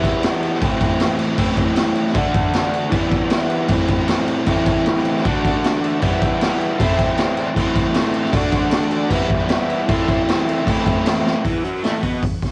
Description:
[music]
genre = garage rock duo or trio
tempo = 155 BPM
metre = 4/4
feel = straight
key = unclear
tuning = A4 = 440 Hz
[part]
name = crunchy overdriven guitar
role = riff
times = 0.0-12.4 s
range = E2 to F#4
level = -21 LUFS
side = equal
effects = none
[part]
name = raw garage drum kit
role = drums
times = 0.0-12.5 s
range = crash cymbal, hi-hat, kick drum, snare drum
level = -22 LUFS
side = equal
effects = cassette tape
[part]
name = combo organ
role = sustained chords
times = 5.2-11.4 s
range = F#4 to F#5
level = -30 LUFS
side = equal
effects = none
[sound]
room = light reverb, small room reverb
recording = home recording on cassette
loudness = -19 LUFS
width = mono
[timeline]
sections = 0.0-11.4 A section; 11.4-12.5 B section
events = drum fill 11.3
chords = 0.0 Em; 0.6 Am; 2.2 D; 2.9 Em; 3.7 Am; 5.2 D; 6.0 Em; 6.8 Am; 8.3 D; 9.1 Em; 9.9 Am; 11.4 E5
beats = 0.23 | 0.62 1.00 1.39 1.78 | 2.16 2.55 2.93 3.32 | 3.71 4.09 4.48 4.86 | 5.25 5.64 6.02 6.41 | 6.79 7.18 7.57 7.95 | 8.34 8.73 9.12 9.50 | 9.89 10.28 10.67 11.06 | 11.45 11.84 12.23

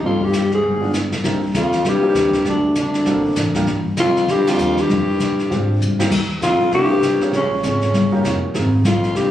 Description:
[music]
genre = jazz, small-group swing and bop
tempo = 197 BPM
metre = 4/4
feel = swing 61% on 8ths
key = C minor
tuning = A4 = 441 Hz
[part]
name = growling alto saxophone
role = melody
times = 0.0-9.3 s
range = Db4 to Ab4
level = -19 LUFS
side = left 2 dB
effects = plate reverb
[part]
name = breathy baritone saxophone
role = second line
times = 0.0-9.3 s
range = Db2 to Ab2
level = -21 LUFS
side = right 2 dB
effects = none
[part]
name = upright bass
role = bass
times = 0.0-9.3 s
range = F1 to Bb2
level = -21 LUFS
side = left 1 dB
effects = none
[part]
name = jazz brush drum kit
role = drums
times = 0.0-9.3 s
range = brushed snare drum, crash cymbal, hi-hat, kick drum, ride cymbal, snare drum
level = -26 LUFS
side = equal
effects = none
[part]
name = clear upright piano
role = accompaniment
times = 0.8-8.7 s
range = G3 to A4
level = -23 LUFS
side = right 1 dB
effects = none
[sound]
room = light reverb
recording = recorded on a phone in the room, club reverb, compression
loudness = -15 LUFS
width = side -12 dB against mid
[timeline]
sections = 0.0-1.2 A section; 1.2-9.3 B section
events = band accent 4.4; drum fill 5.8-6.1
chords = 0.0 Ebadd9 (rootless); 0.6 G7b9; 1.2 Cm7; 2.5 D7b13; 3.7 Gm7; 4.9 Bb13; 6.1 Eb6; 7.3 Bbm7; 7.9 Eb9; 8.5 Abmaj7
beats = | 0.03 0.33 0.64 0.94 | 1.25 1.55 1.85 2.16 | 2.46 2.77 3.07 3.37 | 3.68 3.98 4.29 4.59 | 4.89 5.20 5.50 5.81 | 6.11 6.42 6.72 7.03 | 7.33 7.63 7.94 8.24 | 8.54 8.85 9.15

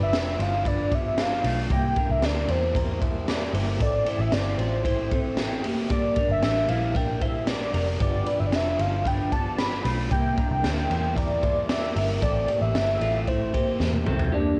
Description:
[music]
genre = jangly indie pop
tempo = 114 BPM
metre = 4/4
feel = straight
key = unclear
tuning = A4 = 439 Hz
[part]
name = warm velvety synth lead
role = melody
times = 0.0-14.6 s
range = D4 to B5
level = -30 LUFS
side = equal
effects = chorus, cassette tape
[part]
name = electric guitar through a small old amp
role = accompaniment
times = 0.0-14.3 s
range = G2 to E4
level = -36 LUFS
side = equal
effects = tremolo
[part]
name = electric guitar through a small old amp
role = arpeggios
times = 0.0-14.6 s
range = A3 to D5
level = -34 LUFS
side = equal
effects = phaser
[part]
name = vintage muted picked electric bass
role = bass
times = 0.0-14.3 s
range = F1 to E2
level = -30 LUFS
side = equal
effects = none
[part]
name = raw garage drum kit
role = drums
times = 0.1-14.3 s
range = hi-hat, kick drum, ride cymbal, snare drum, toms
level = -30 LUFS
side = equal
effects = vintage 12-bit sampler grit, cassette tape
[sound]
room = moderate spring reverb, RT60 1.5 s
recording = home recording on cassette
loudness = -25 LUFS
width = mono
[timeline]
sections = 0.0-14.3 A section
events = drum fill 13.8-14.3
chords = 0.0 G7; 1.7 C7; 3.8 Am; 8.0 G7; 10.1 C7; 12.2 Am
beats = 0.13 0.66 1.18 | 1.70 2.23 2.75 3.28 | 3.80 4.33 4.85 5.38 | 5.90 6.43 6.95 7.48 | 8.00 8.53 9.06 9.58 | 10.11 10.64 11.16 11.69 | 12.22 12.75 13.28 13.80 | 14.33

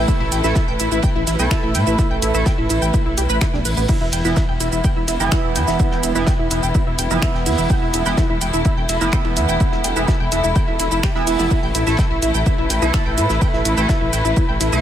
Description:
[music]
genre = melodic techno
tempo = 126 BPM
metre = 4/4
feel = straight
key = E minor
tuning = A4 = 439 Hz
[part]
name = dark studio string section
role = sustained chords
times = 0.0-14.8 s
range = E3 to B4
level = -24 LUFS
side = left 1 dB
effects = sidechain pumping
[part]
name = sync-sweep polysynth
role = stabs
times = 0.0-14.8 s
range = E3 to A4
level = -25 LUFS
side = right 6 dB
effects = chorus, sidechain pumping, tape echo
[part]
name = dark detuned saw bass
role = bass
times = 0.0-14.8 s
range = E1 to A2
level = -22 LUFS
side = equal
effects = sidechain pumping
[part]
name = tight sequenced synth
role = arpeggios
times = 0.1-14.8 s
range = B3 to G6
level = -23 LUFS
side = equal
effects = chorus, sidechain pumping, tape echo
[part]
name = cloth-damped thuddy drum kit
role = drums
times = 0.1-14.8 s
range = hi-hat, ride cymbal, snare drum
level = -33 LUFS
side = right 2 dB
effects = sidechain pumping on hats, high-pass filter on hats, sidechain pumping on cymbals, high-pass filter on cymbals, high-pass filter on snare, high-pass filter on room
[part]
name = electronic kick drum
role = drums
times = 0.1-14.5 s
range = none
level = -18 LUFS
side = equal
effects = none
[part]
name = punchy analog drum machine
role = drums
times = 0.1-14.8 s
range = crash cymbal, finger snaps, hi-hat, shaker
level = -26 LUFS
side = right 3 dB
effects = overdrive
[sound]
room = light reverb, small room ambience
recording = none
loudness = -15 LUFS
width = side -10 dB against mid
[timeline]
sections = 0.0-14.8 A section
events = none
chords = 0.0 A5; 3.9 Em; 11.5 A5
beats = | 0.08 0.56 1.03 1.51 | 1.99 2.46 2.94 3.42 | 3.89 4.37 4.84 5.32 | 5.80 6.27 6.75 7.22 | 7.70 8.18 8.65 9.13 | 9.61 10.08 10.56 11.03 | 11.51 11.99 12.46 12.94 | 13.41 13.89 14.37

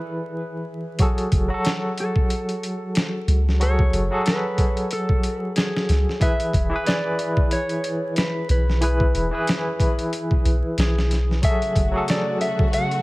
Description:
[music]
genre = trip hop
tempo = 92 BPM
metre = 4/4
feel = swing 57% on 16ths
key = F# minor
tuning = A4 = 440 Hz
[part]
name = mellow electric guitar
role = melody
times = 0.0-13.0 s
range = G#4 to F#5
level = -28 LUFS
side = equal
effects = vintage 12-bit sampler grit, tape echo
[part]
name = barky tine electric piano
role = accompaniment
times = 0.0-13.0 s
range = E3 to B4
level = -25 LUFS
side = equal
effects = tremolo, tape echo
[part]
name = boom bap sampler-style drum kit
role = drums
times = 1.0-13.0 s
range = hi-hat, kick drum, snare drum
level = -22 LUFS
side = equal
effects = small room ambience
[part]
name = soft 808-style bass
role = bass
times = 1.3-11.9 s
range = E1 to C#2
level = -20 LUFS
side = equal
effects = none
[part]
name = dark studio string section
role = sustained chords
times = 11.4-13.0 s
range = C#3 to F#4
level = -29 LUFS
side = equal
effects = none
[sound]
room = digital ambience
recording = vinyl crackle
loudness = -19 LUFS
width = side -21 dB against mid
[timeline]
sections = 0.0-1.0 A section; 1.0-13.0 B section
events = break 0.0-1.0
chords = 0.0 E; 1.0 F#madd9; 6.2 E; 11.4 F#madd9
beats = 0.35 | 1.00 1.65 2.30 2.96 | 3.61 4.26 4.91 5.57 | 6.22 6.87 7.52 8.17 | 8.83 9.48 10.13 10.78 | 11.43 12.09 12.74

